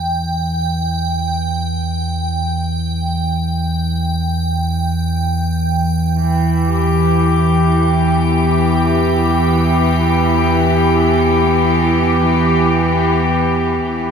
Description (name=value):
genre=dark ambient drone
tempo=free time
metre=none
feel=none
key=E minor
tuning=A4 = 441 Hz
part: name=deep rumbling drone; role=drone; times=0.0-14.1 s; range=E2 to E3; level=-16 LUFS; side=right 1 dB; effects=built-in reverb
part: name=icy glass pad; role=texture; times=0.0-14.1 s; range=G5 to B5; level=-24 LUFS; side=right 3 dB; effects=chorus, built-in reverb
part: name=rich studio cello section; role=sustained chords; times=6.2-14.1 s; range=E3 to G4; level=-15 LUFS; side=left 1 dB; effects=none
room=wet spring reverb, RT60 2.4 s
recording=none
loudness=-13 LUFS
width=side -7 dB against mid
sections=0.0-13.8 A section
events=fade-out on ambient pad 0.0-13.8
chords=0.0 Em